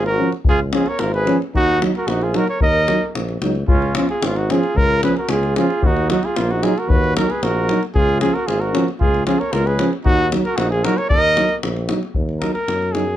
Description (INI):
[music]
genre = balkan folk, Balkan brass band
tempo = 113 BPM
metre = 2/4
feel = straight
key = Eb minor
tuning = A4 = 438 Hz
[part]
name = mellow cornet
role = melody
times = 0.0-13.2 s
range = F4 to Eb5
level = -20 LUFS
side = equal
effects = none
[part]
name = dark trumpet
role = second line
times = 0.0-11.6 s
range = Bb3 to Bb4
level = -25 LUFS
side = right 5 dB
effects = none
[part]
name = warm tuba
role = bass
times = 0.0-13.2 s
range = Ab1 to Gb2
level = -22 LUFS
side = equal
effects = none
[part]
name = davul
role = percussion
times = 0.1-13.1 s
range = none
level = -22 LUFS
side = left 1 dB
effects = none
[part]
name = mellow euphonium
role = accompaniment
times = 0.2-13.1 s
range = F3 to Gb3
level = -23 LUFS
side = right 5 dB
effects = none
[part]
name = warm euphonium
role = accompaniment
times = 0.2-13.0 s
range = Db4 to Eb4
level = -22 LUFS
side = left 2 dB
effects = none
[sound]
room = light reverb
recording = close, detailed microphones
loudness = -16 LUFS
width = side -12 dB against mid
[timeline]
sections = 0.0-3.7 A section; 3.7-12.2 A section; 12.2-13.2 B section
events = speeding up 0.0-13.2; cornet solo 12.2-13.2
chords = 0.0 Db; 1.5 Ebm; 3.7 Db; 5.8 Ebm; 7.9 Db; 10.1 Ebm